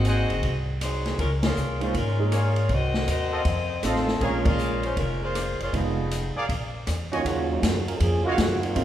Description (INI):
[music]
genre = jazz, big band swing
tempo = 158 BPM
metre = 4/4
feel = swing 65% on 8ths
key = Bb minor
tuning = A4 = 440 Hz
[part]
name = clear saxophone section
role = melody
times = 0.0-6.3 s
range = F3 to Eb5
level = -28 LUFS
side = left 2 dB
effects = none
[part]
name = warm concert grand piano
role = accompaniment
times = 0.0-8.8 s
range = Eb2 to Ab4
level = -30 LUFS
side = right 3 dB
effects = none
[part]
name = upright bass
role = bass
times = 0.0-8.8 s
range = F1 to Ab2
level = -26 LUFS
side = equal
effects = none
[part]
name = swinging big-band drum kit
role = drums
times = 0.0-8.8 s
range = hi-hat, kick drum, ride cymbal, rim click, snare drum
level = -29 LUFS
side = equal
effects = none
[part]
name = warm trumpet section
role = stabs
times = 0.1-8.3 s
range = Gb4 to Ab5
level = -32 LUFS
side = equal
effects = none
[part]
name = warm trombone section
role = second line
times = 7.2-8.8 s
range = Db3 to Bb4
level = -26 LUFS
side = right 2 dB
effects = none
[sound]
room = wet recital hall reverb, RT60 1.6 s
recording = recorded in a church or concert hall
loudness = -22 LUFS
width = side -11 dB against mid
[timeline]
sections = 0.0-7.2 A section; 7.2-8.8 B section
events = band accent 1.4, 4.4; trombone section solo 7.2-8.8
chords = 0.0 Ab7; 1.2 Db6; 2.7 Cm7b5; 3.5 F7; 4.2 Bbm7; 5.7 Fm7b5; 6.5 Bb5; 7.2 Ebm9